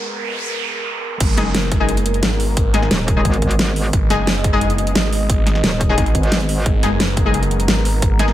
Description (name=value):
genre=dark technical drum and bass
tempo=176 BPM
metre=4/4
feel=straight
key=G# minor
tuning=A4 = 440 Hz
part: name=dark analog pad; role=sustained chords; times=0.0-8.3 s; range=G#3 to D#5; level=-25 LUFS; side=right 2 dB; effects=chorus, sidechain pumping
part: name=noise sweep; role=sound effects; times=0.0-1.2 s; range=none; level=-25 LUFS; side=right 4 dB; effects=none
part: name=phased detuned saw bass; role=bass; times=1.2-8.3 s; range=F#1 to G#1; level=-19 LUFS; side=equal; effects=phaser, overdrive, sidechain pumping, high-pass filter
part: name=dubstep drum kit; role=drums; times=1.2-8.3 s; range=crash cymbal, hi-hat, snare drum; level=-20 LUFS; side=equal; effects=none
part: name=electronic kick drum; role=drums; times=1.2-8.1 s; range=none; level=-18 LUFS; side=equal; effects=none
part: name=orchestra-hit-like synth stab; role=stabs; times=1.4-8.3 s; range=G#3 to G#4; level=-23 LUFS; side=left 4 dB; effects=built-in reverb, dub echo
part: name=metallic wobble bass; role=bass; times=2.9-6.6 s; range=D#1 to G#1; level=-19 LUFS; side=equal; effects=chorus
room=light reverb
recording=high-pass filter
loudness=-15 LUFS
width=side -13 dB against mid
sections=0.0-1.2 A section; 1.2-8.3 B section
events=break 0.0-1.2; build-up 0.0-1.2; noise sweep 0.0-1.2; drop 1.2-8.3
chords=0.0 G#madd9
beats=0.18 0.52 0.86 | 1.21 1.55 1.89 2.23 | 2.57 2.91 3.25 3.59 | 3.93 4.27 4.61 4.96 | 5.30 5.64 5.98 6.32 | 6.66 7.00 7.34 7.68 | 8.02